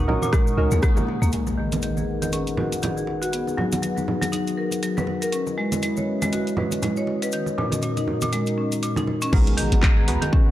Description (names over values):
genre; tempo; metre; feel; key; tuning
afro house; 120 BPM; 4/4; swing 58% on 16ths; G# minor; A4 = 438 Hz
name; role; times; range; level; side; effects
dark analog pad; sustained chords; 0.0-10.5 s; B3 to D#6; -29 LUFS; left 2 dB; chorus, sidechain pumping
marimba with hard mallets; arpeggios; 0.0-10.5 s; A#2 to C#5; -25 LUFS; equal; sidechain pumping, low-pass filter, tape echo
deep mellow chord stab; stabs; 0.0-1.3, 9.3-10.5 s; B3 to B4; -30 LUFS; right 2 dB; chorus, sidechain pumping, tape echo
warm 808-style bass; bass; 0.0-1.3, 9.3-10.2 s; G#1 to D#2; -21 LUFS; equal; tube saturation, sidechain pumping
congas; percussion; 0.1-10.4 s; none; -30 LUFS; right 3 dB; none
cabasa; percussion; 0.2-9.3 s; none; -37 LUFS; left 4 dB; none
afro-pop drum kit; drums; 0.3-10.3 s; crash cymbal, handclaps, hi-hat, rim click; -31 LUFS; equal; none
electronic kick drum; drums; 0.3-0.9, 9.3-10.4 s; none; -18 LUFS; equal; none
impact; sound effects; 1.3-3.3, 9.4-10.5 s; none; -30 LUFS; equal; none
room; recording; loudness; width
light reverb, digital ambience; dark, warm production; -20 LUFS; side -13 dB against mid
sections
0.0-1.3 A section; 1.3-9.3 B section; 9.3-10.5 C section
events
band accent 0.8; impact 1.3-3.3, 9.3-10.5; filter sweep on marimba 1.3-9.3; drop 9.3-10.5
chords
0.0 D#m7; 1.3 G#m9; 3.3 B6; 5.3 C#m11; 7.3 D#m7; 9.3 G#m9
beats
0.33 0.83 | 1.33 1.83 2.33 2.83 | 3.33 3.83 4.33 4.83 | 5.33 5.83 6.33 6.83 | 7.33 7.83 8.33 8.83 | 9.33 9.83 10.33